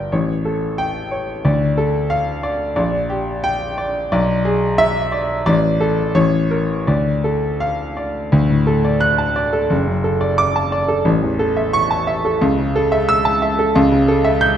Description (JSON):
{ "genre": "classical, virtuoso piano study", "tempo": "81-92 BPM", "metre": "2/4", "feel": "rubato", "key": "D minor, D major from 8.3 s", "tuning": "A4 = 437 Hz", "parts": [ { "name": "warm grand piano", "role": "solo", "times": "0.0-14.6 s", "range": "F#1 to G6", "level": "-15 LUFS", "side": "equal", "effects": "none" } ], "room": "wet recital hall reverb, RT60 1.4 s", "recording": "dark, warm production", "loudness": "-15 LUFS", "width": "side -10 dB against mid", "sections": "0.0-8.3 A section; 8.3-14.6 B section", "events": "none", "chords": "0.1 A7; 1.4 Dm; 2.8 Gm/Bb; 4.1 E7/B; 5.5 D5/A; 6.2 A; 6.9 Dm; 8.3 D; 9.7 D/F#; 11.1 A; 12.4 A/C#; 13.8 A7/C#" }